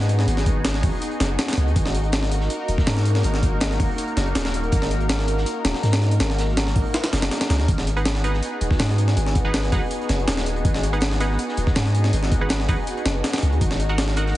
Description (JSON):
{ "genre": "drum and bass, jungle", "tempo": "162 BPM", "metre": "4/4", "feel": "straight", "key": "G# minor", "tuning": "A4 = 437 Hz", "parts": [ { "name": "lush unison pad", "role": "sustained chords", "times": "0.0-14.4 s", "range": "A#3 to A#4", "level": "-28 LUFS", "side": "equal", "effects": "chorus, phaser" }, { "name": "long sustained 808-style bass", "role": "bass", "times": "0.0-14.3 s", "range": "D#1 to G#2", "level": "-22 LUFS", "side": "equal", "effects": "none" }, { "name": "jungle sampler-style drum kit", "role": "drums", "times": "0.0-14.3 s", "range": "hi-hat, kick drum, snare drum", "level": "-23 LUFS", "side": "equal", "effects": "overdrive" }, { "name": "crunchy breakbeat drum kit", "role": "drums", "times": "0.1-14.3 s", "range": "hi-hat, snare drum", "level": "-39 LUFS", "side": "right 1 dB", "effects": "none" }, { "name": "band-passed chord stab", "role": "stabs", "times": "8.0-14.4 s", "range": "D#4 to F#5", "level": "-30 LUFS", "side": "right 3 dB", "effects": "chorus, cassette tape, dub echo" } ], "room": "digital ambience", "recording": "heavily compressed radio sound, nothing above 10.3 kHz", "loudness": "-19 LUFS", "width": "side -15 dB against mid", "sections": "0.0-14.4 A section", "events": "none", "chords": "0.0 G#m7; 1.8 D#m; 7.7 G#m7; 13.6 D#m" }